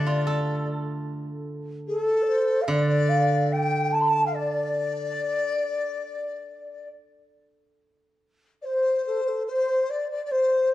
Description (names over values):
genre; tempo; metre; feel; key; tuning
chinese traditional, Chinese chamber ensemble; 67-75 BPM; 4/4; rubato; D yu mode; A4 = 439 Hz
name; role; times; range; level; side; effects
mellow xiao; melody; 0.0-10.7 s; A4 to A5; -25 LUFS; equal; none
mellow dizi; second line; 0.0-10.7 s; A4 to C6; -28 LUFS; left 2 dB; none
steel-string zither; accompaniment; 0.0-5.1 s; D3 to A4; -26 LUFS; right 1 dB; none
room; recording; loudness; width
wet recital hall reverb, RT60 1.4 s; dark, warm production; -22 LUFS; side -14 dB against mid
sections
0.0-7.8 A section; 7.8-10.7 B section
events
none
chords
none